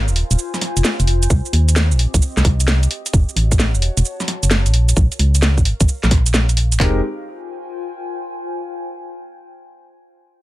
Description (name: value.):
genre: UK garage, two-step garage.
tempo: 131 BPM.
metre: 4/4.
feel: swing 66% on 16ths.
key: F minor.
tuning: A4 = 440 Hz.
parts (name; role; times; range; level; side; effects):
organ-like FM bass; bass; 0.0-7.0 s; Eb1 to Eb2; -15 LUFS; equal; none.
warbly tape-like pad; texture; 0.0-8.6 s; C4 to Db6; -30 LUFS; left 3 dB; chorus, built-in reverb, phaser, sidechain pumping.
garage drum kit; drums; 0.1-6.8 s; hi-hat, shaker, snare drum; -20 LUFS; right 1 dB; none.
garage drum kit; drums; 1.3-6.9 s; handclaps, kick drum; -16 LUFS; equal; none.
warm grand piano; stabs; 6.8-7.0 s; Ab3 to Bb4; -24 LUFS; left 2 dB; dub echo.
room: little or no reverb.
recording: none.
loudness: -14 LUFS.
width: side -16 dB against mid.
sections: 0.0-6.8 A section; 6.8-8.6 B section.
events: fade-out on ambient pad 0.0-6.8.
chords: 0.0 Fm7; 1.3 Cm7; 2.9 Gbm; 4.7 Bbm7; 6.8 Fmadd9.